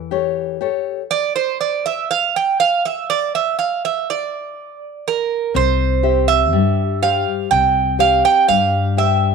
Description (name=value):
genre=greek folk, Greek bouzouki band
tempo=122 BPM (eighths)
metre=9/8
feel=straight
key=unclear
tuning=A4 = 440 Hz
part: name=Greek bouzouki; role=melody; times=0.0-9.3 s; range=A4 to G5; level=-16 LUFS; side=right 7 dB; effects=none
part: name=nylon-string guitar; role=accompaniment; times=0.0-9.3 s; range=E3 to G5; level=-21 LUFS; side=left 15 dB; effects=none
part: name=upright bass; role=bass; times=0.0-9.3 s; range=C2 to G2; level=-20 LUFS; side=left 2 dB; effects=none
room=moderate echo chamber reverb, RT60 1.3 s, small room ambience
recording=1960s-style stereo with parts hard left and right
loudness=-15 LUFS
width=side -5 dB against mid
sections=0.0-5.6 A section; 5.6-9.3 B section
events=none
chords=0.0 A7; 1.1 N.C.; 5.6 C